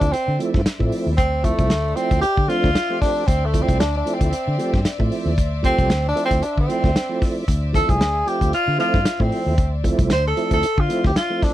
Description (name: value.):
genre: funk.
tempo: 114 BPM.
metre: 4/4.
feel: swing 56% on 16ths.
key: D minor.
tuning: A4 = 438 Hz.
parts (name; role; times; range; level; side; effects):
mellow tenor saxophone; melody; 0.0-11.5 s; A3 to C5; -21 LUFS; equal; none.
warm studio string section; sustained chords; 0.0-11.5 s; C5 to E5; -34 LUFS; left 2 dB; none.
tonewheel organ; stabs; 0.0-11.5 s; F3 to G4; -24 LUFS; right 2 dB; overdrive, chorus vibrato, slow rotary speaker.
vintage muted fingered electric bass; bass; 0.0-11.1 s; C2 to D3; -22 LUFS; equal; none.
warm soul drum kit; drums; 0.0-11.5 s; hi-hat, kick drum, snare drum; -21 LUFS; equal; none.
room: little or no reverb.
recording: dry, close 1970s-style studio recording.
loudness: -17 LUFS.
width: side -13 dB against mid.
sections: 0.0-11.5 A section.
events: tenor saxophone solo 0.0-11.5.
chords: 0.0 Dm9.